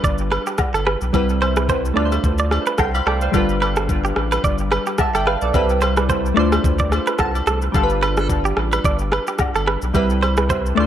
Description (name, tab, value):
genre	afrobeats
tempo	109 BPM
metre	4/4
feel	swing 55% on 16ths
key	G mixolydian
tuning	A4 = 438 Hz
part	glassy digital keys	accompaniment	0.0-10.9 s	G3 to C6	-22 LUFS	equal	chorus, phaser, dub echo
part	direct-recorded clean electric guitar	riff	0.0-10.9 s	G4 to D5	-23 LUFS	right 5 dB	dub echo
part	saturated sub bass	bass	0.0-10.9 s	G1 to D2	-22 LUFS	equal	none
part	afro-pop drum kit	drums	0.0-10.8 s	kick drum, rim click, shaker	-23 LUFS	equal	dub echo
part	agogo bells and woodblock	percussion	0.3-10.4 s	none	-28 LUFS	left 4 dB	dub echo
room	light reverb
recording	echo-heavy mix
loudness	-16 LUFS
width	side -10 dB against mid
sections	0.0-10.9 A section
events	synth keys fill 6.9-7.7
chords	0.0 G7; 1.1 Cmaj7; 2.0 Dm7; 3.3 G7; 5.5 Cmaj7; 6.4 Dm7; 7.7 G7; 9.9 Cmaj7